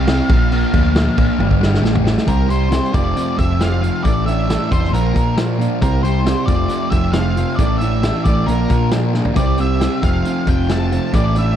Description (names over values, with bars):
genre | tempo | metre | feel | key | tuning
quiet-loud alternative rock | 136 BPM | 4/4 | straight | unclear | A4 = 442 Hz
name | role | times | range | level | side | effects
octave-fuzz lead guitar | melody | 0.0-11.6 s | Bb4 to A5 | -24 LUFS | equal | distortion
fuzz guitar | riff | 0.0-11.6 s | F2 to C4 | -19 LUFS | equal | distortion
overdriven picked electric bass | bass | 0.0-11.6 s | F1 to Bb2 | -19 LUFS | equal | none
loose indie drum kit | drums | 0.1-11.5 s | crash cymbal, hi-hat, kick drum, snare drum, toms | -19 LUFS | equal | none
fingerpicked plugged-in swing-style acoustic guitar | arpeggios | 2.3-11.6 s | F2 to C5 | -24 LUFS | right 4 dB | none
room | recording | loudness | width
light reverb, small room reverb | none | -14 LUFS | side -10 dB against mid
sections
0.0-2.3 A section; 2.3-11.6 B section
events
drum fill 1.4-2.3, 9.1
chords
0.3 Bb; 1.4 G5; 1.8 A5; 2.3 C; 2.9 F6; 4.0 Asus4; 4.9 Bb; 5.8 C; 6.5 F6; 7.6 Asus4; 8.5 Bb; 9.4 C; 10.0 F